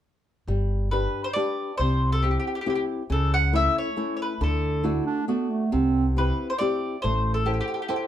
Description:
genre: italian folk, Italian serenade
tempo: 137 BPM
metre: 3/4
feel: straight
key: G major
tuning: A4 = 440 Hz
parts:
  - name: flamenco guitar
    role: accompaniment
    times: 0.5-8.1 s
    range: C3 to C5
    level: -28 LUFS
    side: left 3 dB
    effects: none
  - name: upright bass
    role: bass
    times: 0.5-7.6 s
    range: G1 to D2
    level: -24 LUFS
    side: equal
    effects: none
  - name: mandolin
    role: melody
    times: 0.9-8.0 s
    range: G4 to F#5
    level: -27 LUFS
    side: equal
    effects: none
  - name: warm clarinet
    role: second line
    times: 4.8-6.1 s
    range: A3 to E4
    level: -24 LUFS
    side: right 6 dB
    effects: none
room: light reverb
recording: dark, warm production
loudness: -22 LUFS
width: side -11 dB against mid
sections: 0.5-8.1 A section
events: none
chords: 0.5 G; 1.8 C; 3.1 A/C#; 4.4 D; 5.7 C; 7.0 Am

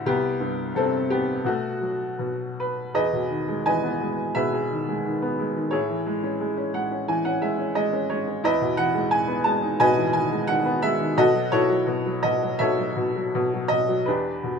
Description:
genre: classical, lyrical solo piano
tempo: 77-90 BPM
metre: 4/4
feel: rubato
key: E major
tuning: A4 = 440 Hz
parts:
  - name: bright upright piano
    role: solo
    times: 0.0-14.6 s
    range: C2 to A5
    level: -21 LUFS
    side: equal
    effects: none
room: light reverb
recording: none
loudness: -21 LUFS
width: side -6 dB against mid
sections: 0.0-2.9 A section; 2.9-14.1 B section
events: upright piano fill 6.4-8.4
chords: 0.1 C5; 1.4 B5; 2.9 Emaj7; 5.7 Amaj7; 8.4 Emaj7; 11.2 B9sus4; 14.1 Em7

